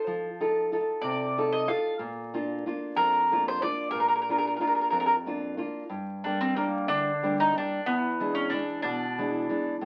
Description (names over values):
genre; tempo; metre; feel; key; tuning
italian folk, Italian serenade; 62 BPM (dotted quarters); 6/8; straight; Bb major; A4 = 441 Hz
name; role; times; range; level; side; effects
mandolin; melody; 0.0-9.8 s; Bb3 to F5; -29 LUFS; equal; none
nylon-string guitar; accompaniment; 0.0-9.8 s; E2 to A4; -32 LUFS; equal; none
room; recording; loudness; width
wet studio reverb, RT60 0.6 s; very old 78 rpm record, vinyl crackle; -28 LUFS; mono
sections
0.0-5.9 A section; 5.9-9.8 B section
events
none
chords
0.0 F7; 2.0 Bb; 5.9 Gm; 7.8 E7